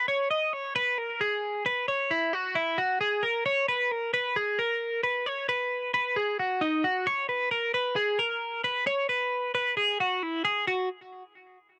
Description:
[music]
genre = indie pop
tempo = 133 BPM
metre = 4/4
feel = straight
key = unclear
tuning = A4 = 439 Hz
[part]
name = twelve-string electric guitar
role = solo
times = 0.0-10.9 s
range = D#4 to D#5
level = -28 LUFS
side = equal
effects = cassette tape
[sound]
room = moderate booth ambience, RT60 0.2 s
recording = home recording on cassette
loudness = -28 LUFS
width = mono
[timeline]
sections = 0.0-3.5 A section; 3.5-10.7 B section; 10.7-11.8 C section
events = none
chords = none

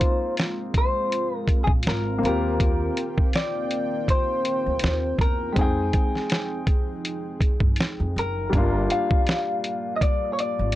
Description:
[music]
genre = lo-fi hip hop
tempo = 81 BPM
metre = 4/4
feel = swing 56% on 16ths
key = F dorian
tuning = A4 = 440 Hz
[part]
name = electric guitar through a small old amp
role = melody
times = 0.0-10.8 s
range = G4 to F5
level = -27 LUFS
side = left 2 dB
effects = warbly pitch drift
[part]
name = dark upright piano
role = accompaniment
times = 0.0-10.8 s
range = G3 to G5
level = -30 LUFS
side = left 1 dB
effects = cassette tape
[part]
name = dark analog pad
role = sustained chords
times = 0.2-10.8 s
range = Eb3 to G5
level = -33 LUFS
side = right 2 dB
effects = chorus
[part]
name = lo-fi sampler-style drum kit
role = drums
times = 0.0-10.8 s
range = hi-hat, kick drum, snare drum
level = -22 LUFS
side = equal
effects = none
[part]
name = upright bass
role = bass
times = 1.7-10.7 s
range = Gb1 to G2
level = -27 LUFS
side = equal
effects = none
[sound]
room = light reverb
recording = dry, gritty hardware recording, cassette tape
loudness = -21 LUFS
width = side -15 dB against mid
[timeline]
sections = 0.0-10.8 A section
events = none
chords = 0.0 Ab6; 2.2 Eb69; 5.6 Fm9; 8.5 Gm7

